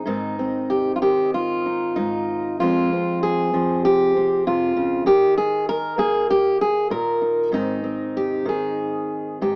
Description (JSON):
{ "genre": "folk, solo fingerstyle acoustic guitar", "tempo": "96 BPM", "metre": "4/4", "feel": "rubato", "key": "Ab major", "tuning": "A4 = 439 Hz", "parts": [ { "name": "fingerpicked steel-string acoustic guitar", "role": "solo", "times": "0.0-9.6 s", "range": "F2 to Bb4", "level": "-21 LUFS", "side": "equal", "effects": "none" } ], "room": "moderate studio reverb, RT60 0.5 s", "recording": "band playing live in one room, small speaker sound", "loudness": "-21 LUFS", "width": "mono", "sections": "0.1-9.6 A section", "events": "none", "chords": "0.1 Ab; 2.6 Fm; 5.1 Eb5; 7.5 Ab" }